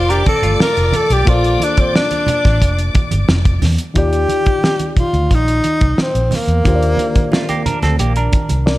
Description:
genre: lush 1970s-style soul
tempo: 89 BPM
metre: 4/4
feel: straight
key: unclear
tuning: A4 = 439 Hz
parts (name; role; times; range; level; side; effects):
- breathy tenor saxophone; melody; 0.0-7.7 s; Bb3 to Bb4; -18 LUFS; left 1 dB; analog delay
- warm studio string section; second line; 0.0-3.6 s; D5 to D6; -22 LUFS; left 2 dB; none
- reed electric piano; accompaniment; 0.0-8.8 s; Bb2 to A5; -24 LUFS; left 3 dB; none
- semi-hollow electric guitar; riff; 0.0-1.4, 7.3-8.8 s; A3 to Bb4; -22 LUFS; right 4 dB; harmonic tremolo
- vintage muted fingered electric bass; bass; 0.0-8.8 s; F1 to E2; -16 LUFS; equal; none
- cloth-damped thuddy drum kit; drums; 0.1-8.8 s; hi-hat, kick drum, snare drum; -16 LUFS; equal; none
- congas; percussion; 0.3-8.7 s; none; -25 LUFS; right 4 dB; none
room: small room ambience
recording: none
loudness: -12 LUFS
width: side -17 dB against mid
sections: 0.0-4.0 A section; 4.0-8.8 B section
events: tenor saxophone solo 0.0-4.0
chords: 0.0 Bbmaj9; 4.0 Ebmaj9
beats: 0.60 | 1.27 1.95 2.62 3.29 | 3.96 4.63 5.31 5.98 | 6.65 7.32 8.00 8.67

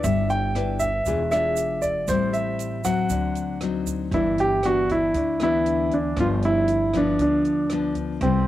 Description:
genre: bossa nova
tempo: 118 BPM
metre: 4/4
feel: straight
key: G major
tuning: A4 = 439 Hz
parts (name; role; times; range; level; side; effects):
- warm grand piano; melody; 0.0-8.5 s; C4 to G5; -22 LUFS; right 1 dB; cassette tape
- nylon-string guitar; accompaniment; 0.0-8.5 s; G2 to B4; -26 LUFS; left 6 dB; cassette tape
- upright bass; bass; 0.0-8.5 s; E1 to D2; -29 LUFS; right 2 dB; none
- compact cocktail drum kit; drums; 0.0-8.3 s; hi-hat, kick drum, rim click; -35 LUFS; right 1 dB; cassette tape
- egg shaker; percussion; 0.0-4.1 s; none; -37 LUFS; right 16 dB; none
room: moderate spring reverb, RT60 1.8 s, small room ambience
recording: home recording on cassette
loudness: -20 LUFS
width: side -14 dB against mid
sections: 0.0-4.1 A section; 4.1-8.5 A section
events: none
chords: 0.0 G6; 1.1 E7b9; 2.1 Am7; 3.1 D7b9; 4.1 G6; 6.2 G7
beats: | 0.04 0.55 1.06 1.57 | 2.08 2.59 3.10 3.61 | 4.12 4.63 5.14 5.65 | 6.17 6.68 7.19 7.70 | 8.21

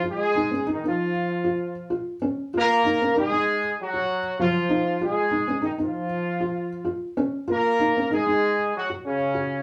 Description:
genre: afrobeat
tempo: 97 BPM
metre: 4/4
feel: swing 55% on 16ths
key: Eb minor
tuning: A4 = 440 Hz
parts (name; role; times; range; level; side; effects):
- warm horn section; melody; 0.0-9.6 s; Db3 to Bb4; -25 LUFS; equal; none
- felt-muted upright piano; arpeggios; 0.0-9.6 s; Gb3 to Gb4; -29 LUFS; equal; none
room: wet small room reverb, RT60 0.5 s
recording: band playing live in one room, small room ambience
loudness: -24 LUFS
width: mono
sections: 0.0-9.6 A section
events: none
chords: 0.0 Dbadd9 (rootless); 2.2 Ebm7; 4.7 Dbadd9 (rootless); 7.2 Ebm7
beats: 0.36 0.98 1.60 | 2.22 2.83 3.46 4.07 | 4.69 5.31 5.93 6.55 | 7.17 7.79 8.41 9.03

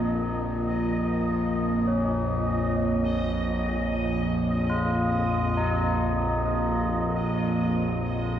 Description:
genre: dark ambient drone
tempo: free time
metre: none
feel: none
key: unclear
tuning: A4 = 438 Hz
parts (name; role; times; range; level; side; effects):
- deep dark ambient pad; sustained chords; 0.0-8.4 s; Bb3 to C5; -28 LUFS; equal; chorus, built-in reverb
- tubular bells; arpeggios; 0.0-8.4 s; Db4 to F4; -31 LUFS; left 1 dB; diffuse ambient delay
- bowed-like drone; drone; 0.0-8.4 s; Bb1 to F2; -28 LUFS; equal; built-in reverb
- bubbling stepped-filter texture; texture; 0.0-8.4 s; Eb5; -33 LUFS; right 2 dB; chorus, built-in reverb
room: wet lush hall reverb, RT60 2.5 s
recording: dreamy mix soaked in reverb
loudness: -23 LUFS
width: side -10 dB against mid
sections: 0.0-8.4 A section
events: none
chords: 0.0 Bbmadd9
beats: free time

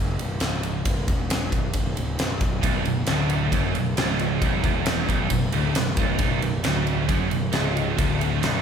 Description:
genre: hard rock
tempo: 135 BPM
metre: 4/4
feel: straight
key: B minor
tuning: A4 = 438 Hz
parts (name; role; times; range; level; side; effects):
- fuzz picked electric bass; bass; 0.0-8.6 s; B0 to F#1; -28 LUFS; equal; overdrive
- huge arena drum kit; drums; 0.2-8.5 s; kick drum, ride cymbal, snare drum; -25 LUFS; equal; none
- overdriven semi-hollow guitar; riff; 2.6-8.6 s; B1 to F#2; -27 LUFS; left 4 dB; phaser
- scooped high-gain guitar; riff; 2.6-8.6 s; B1 to F#2; -26 LUFS; right 6 dB; distortion
room: moderate large studio reverb, RT60 1.2 s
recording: band playing live in one room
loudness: -21 LUFS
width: side -7 dB against mid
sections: 0.0-8.6 A section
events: none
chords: 0.0 Bm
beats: 0.41 | 0.85 1.30 1.74 2.19 | 2.63 3.08 3.52 3.97 | 4.42 4.86 5.31 5.75 | 6.20 6.65 7.09 7.54 | 7.99 8.43

